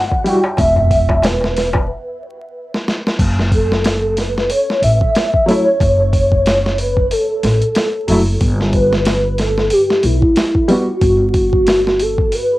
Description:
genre	trip hop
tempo	92 BPM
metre	4/4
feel	swing 57% on 16ths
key	F# phrygian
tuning	A4 = 440 Hz
part	pure breathy sine lead	melody	0.0-12.6 s	E4 to G5	-16 LUFS	equal	ensemble chorus, cassette tape, plate reverb, tape echo
part	dusty soul sampler-style drum kit	drums	0.1-12.5 s	crash cymbal, hi-hat, kick drum, snare drum	-18 LUFS	equal	overdrive, studio reverb, cassette tape
part	darbuka	percussion	0.1-1.9 s	none	-20 LUFS	equal	none
part	felt-muted upright piano	accompaniment	0.2-0.4, 5.5-10.8 s	F#3 to F#4	-16 LUFS	equal	tremolo, vintage 12-bit sampler grit, cassette tape, plate reverb
part	upright bass	bass	0.6-12.3 s	E1 to B1	-18 LUFS	equal	tube saturation
room	light reverb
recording	home recording on cassette, vinyl crackle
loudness	-12 LUFS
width	side -17 dB against mid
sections	0.0-3.2 A section; 3.2-12.6 A section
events	break 1.9-3.2; drum fill 2.7-3.2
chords	0.0 Emadd9; 3.2 F#m7; 8.4 Gmaj7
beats	| 0.58 1.24 1.89 2.54 | 3.19 3.84 4.50 5.15 | 5.80 6.45 7.10 7.76 | 8.41 9.06 9.71 10.37 | 11.02 11.67 12.32

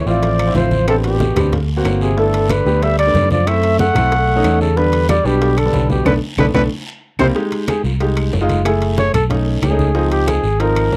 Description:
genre	Afro-Cuban jazz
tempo	185 BPM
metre	4/4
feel	straight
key	F minor from 7.4 s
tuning	A4 = 440 Hz
part	mellow trumpet	melody	0.0-11.0 s	F4 to F#5	-20 LUFS	equal	none
part	breathy tenor saxophone	second line	0.0-7.3 s	B2 to A3	-24 LUFS	equal	none
part	clear grand piano	accompaniment	0.1-10.9 s	F3 to Ab4	-23 LUFS	equal	none
part	fingered electric bass	bass	0.1-11.0 s	Gb1 to F#2	-20 LUFS	equal	none
part	bongos	percussion	0.1-11.0 s	none	-31 LUFS	equal	none
part	congas	percussion	0.1-11.0 s	none	-25 LUFS	equal	none
part	guiro	percussion	0.1-11.0 s	none	-37 LUFS	equal	none
part	timbales	percussion	0.2-11.0 s	none	-28 LUFS	equal	none
part	claves	percussion	0.4-10.9 s	none	-33 LUFS	equal	none
room	light reverb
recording	dry, close 1970s-style studio recording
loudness	-16 LUFS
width	mono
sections	0.0-7.4 A section; 7.4-11.0 B section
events	band accent 6.1-7.4; drum fill 6.7-7.4; trumpet solo 7.4-11.0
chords	0.0 Dm7; 0.9 Am11; 1.5 Daug7; 2.2 G69; 3.5 F#m7b5; 4.1 B7; 4.8 Em7; 6.1 Bm7; 6.7 C5; 7.4 Fm7; 8.7 Gbm7; 9.3 B9; 10.0 Dbmaj7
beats	0.23 0.55 | 0.88 1.20 1.53 1.85 | 2.17 2.50 2.82 3.15 | 3.47 3.79 4.12 4.44 | 4.77 5.09 5.41 5.74 | 6.06 6.38 6.71 7.03 | 7.36 7.68 8.01 8.33 | 8.65 8.98 9.30 9.63 | 9.95 10.28 10.60 10.93

